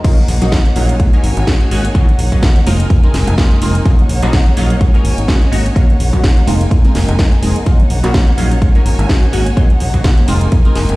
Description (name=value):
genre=filtered disco house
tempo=126 BPM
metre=4/4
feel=swing 56% on 16ths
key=Eb dorian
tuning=A4 = 440 Hz
part: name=funky polysynth comp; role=accompaniment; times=0.0-11.0 s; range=Gb3 to Bb4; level=-20 LUFS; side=equal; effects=chorus, phaser, cassette tape, sidechain pumping, low-pass filter
part: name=warm studio violin section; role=sustained chords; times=0.0-11.0 s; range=Eb4 to Ab5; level=-24 LUFS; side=equal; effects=sidechain pumping, low-pass filter
part: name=fingered electric bass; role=bass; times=0.0-11.0 s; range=F1 to Ab2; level=-15 LUFS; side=equal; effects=sidechain pumping, low-pass filter
part: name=electronic kick drum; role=drums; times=0.0-10.6 s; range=none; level=-10 LUFS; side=equal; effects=none
part: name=house drum kit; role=drums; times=0.0-11.0 s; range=crash cymbal, hi-hat, snare drum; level=-22 LUFS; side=equal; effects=sidechain pumping on hats, sidechain pumping on cymbals
room=digital ambience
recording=played on a big sound system in a bare room, stone room reverb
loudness=-10 LUFS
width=side -20 dB against mid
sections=0.0-11.0 A section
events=drop 0.0-11.0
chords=0.0 Ebm7; 1.0 Ab7sus4; 2.0 Ebm7; 2.7 Bb7sus4/F; 3.9 Ebm7; 4.8 Ab7sus4; 5.8 Ebm7; 6.5 Bb7sus4/F; 7.7 Ebm7; 8.6 Ab7sus4; 9.6 Ebm7; 10.3 Bb7sus4/F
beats=| 0.05 0.52 1.00 1.48 | 1.95 2.43 2.90 3.38 | 3.86 4.33 4.81 5.28 | 5.76 6.24 6.71 7.19 | 7.67 8.14 8.62 9.09 | 9.57 10.05 10.52